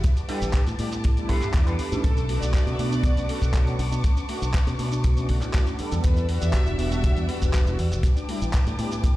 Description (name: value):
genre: nu-disco, nu disco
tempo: 120 BPM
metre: 4/4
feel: straight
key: B minor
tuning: A4 = 444 Hz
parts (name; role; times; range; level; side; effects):
- dark chamber string section; sustained chords; 0.0-9.2 s; B4 to E6; -37 LUFS; left 1 dB; vintage 12-bit sampler grit, sidechain pumping
- dusty soul sampler-style drum kit; drums; 0.0-9.1 s; handclaps, hi-hat, shaker; -36 LUFS; equal; small room ambience
- kick drum; drums; 0.0-9.1 s; none; -22 LUFS; equal; small room ambience
- mellow synth brass; accompaniment; 0.3-8.9 s; G3 to B4; -32 LUFS; right 1 dB; chorus, phaser, sidechain pumping
- electric guitar with an envelope filter; riff; 0.3-2.0 s; D4 to B4; -33 LUFS; right 1 dB; analog chorus, ping-pong delay
- fingered electric bass with an envelope filter; bass; 0.4-9.1 s; E1 to B2; -26 LUFS; equal; tube saturation
- rich chamber violin section; melody; 2.0-7.8 s; A4 to E5; -35 LUFS; left 1 dB; digital delay
- soft round pluck; arpeggios; 2.0-9.1 s; A3 to F#4; -36 LUFS; left 2 dB; chorus, sidechain pumping, digital delay
room: studio reverb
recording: played on a big sound system in a bare room, large studio reverb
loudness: -21 LUFS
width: side -16 dB against mid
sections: 0.0-9.2 A section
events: none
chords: 0.0 A9sus4; 2.0 Bm9; 6.0 Em9; 8.0 A9sus4